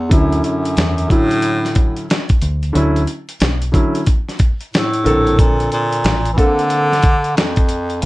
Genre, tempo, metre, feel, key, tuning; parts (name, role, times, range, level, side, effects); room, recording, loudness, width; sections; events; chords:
hip hop, jazz-hop; 91 BPM; 4/4; swing 63% on 16ths; D major; A4 = 440 Hz
bright bass clarinet; melody; 0.0-8.1 s; E2 to E3; -17 LUFS; equal
warm grand piano; accompaniment; 0.1-6.9 s; D3 to Bb4; -18 LUFS; equal
deep dub fingered electric bass; bass; 0.1-8.1 s; A1 to E2; -18 LUFS; equal
dusty soul sampler-style drum kit; drums; 0.1-8.1 s; hi-hat, kick drum, snare drum; -16 LUFS; equal
moderate studio reverb, RT60 0.5 s; dark, warm production, lossy compression artefacts; -13 LUFS; side -19 dB against mid
0.1-8.1 A section
0.1 Dmaj9; 5.1 Bbmaj9